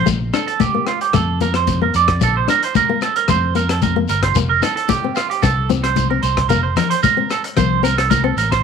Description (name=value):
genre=highlife guitar band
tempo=112 BPM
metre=4/4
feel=straight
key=unclear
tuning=A4 = 439 Hz
part: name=clean electric guitar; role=arpeggios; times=0.0-8.6 s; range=F4 to D5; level=-18 LUFS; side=right 12 dB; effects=phaser, slapback echo
part: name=fingered electric bass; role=bass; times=0.0-8.6 s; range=F1 to F2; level=-20 LUFS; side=equal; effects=none
part: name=nylon-string guitar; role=accompaniment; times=0.1-8.4 s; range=A3 to Eb4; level=-23 LUFS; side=left 11 dB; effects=none
part: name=crunchy breakbeat drum kit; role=drums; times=0.1-8.6 s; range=hi-hat, kick drum, rim click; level=-23 LUFS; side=left 4 dB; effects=none
part: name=congas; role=percussion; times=0.1-8.4 s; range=none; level=-22 LUFS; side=left 10 dB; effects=none
part: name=shekere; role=percussion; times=0.1-8.5 s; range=none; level=-27 LUFS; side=left 7 dB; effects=none
room=studio reverb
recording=1960s-style stereo with parts hard left and right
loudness=-14 LUFS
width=side -6 dB against mid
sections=0.0-8.6 A section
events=none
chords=0.1 Bbmaj7; 4.4 Fsus4